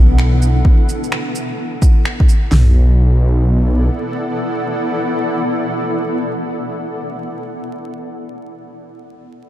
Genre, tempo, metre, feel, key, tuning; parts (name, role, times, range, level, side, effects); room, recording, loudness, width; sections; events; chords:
future garage; 128 BPM; 4/4; swing 64% on 16ths; B minor; A4 = 440 Hz
granular cloud pad; sustained chords; 0.0-7.0 s; B3 to F#5; -21 LUFS; equal; built-in reverb, sidechain pumping
swelling detuned saw bass; bass; 0.0-3.9 s; B1; -11 LUFS; equal; sidechain pumping
electronic finger snaps and shaker; drums; 0.2-2.4 s; -28 LUFS; equal; overdrive
deep house drum kit; drums; 0.6-2.7 s; hi-hat, kick drum, snare drum, toms; -11 LUFS; equal; overdrive
light reverb; vinyl crackle; -13 LUFS; side -13 dB against mid
0.0-2.5 A section; 2.5-6.3 B section
0.0 Bm7